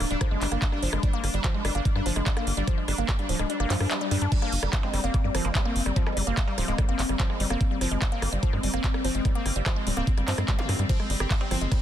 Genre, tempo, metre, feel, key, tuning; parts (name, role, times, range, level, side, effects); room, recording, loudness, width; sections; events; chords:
psychedelic trance; 146 BPM; 4/4; straight; G phrygian; A4 = 439 Hz
pulsing gated texture; sustained chords; 0.0-11.8 s; C4 to D4; -33 LUFS; left 2 dB; chorus, built-in reverb, sidechain pumping
tight sequencer bass; bass; 0.0-11.7 s; D1 to G2; -28 LUFS; equal; tube saturation
drum and bass drum kit; drums; 0.0-11.8 s; crash cymbal, handclaps, hi-hat, ride cymbal, rim click; -32 LUFS; equal
woody wave-folded pluck; riff; 0.1-11.8 s; F3 to G4; -31 LUFS; equal; chorus, auto-pan, sidechain pumping, ping-pong delay
electronic kick drum; drums; 0.2-11.8 s; -25 LUFS; equal
swell and zap; sound effects; 3.7-4.3, 10.6-10.7 s; -38 LUFS; left 3 dB
metallic wobble bass; second line; 4.8-6.8, 11.4-11.6 s; G3 to C4; -42 LUFS; right 4 dB
little or no reverb; dense, heavily limited modern master; -23 LUFS; side -11 dB against mid
0.0-11.8 A section
kick drops out 3.5-4.3; swell 3.7-4.3
0.0 G5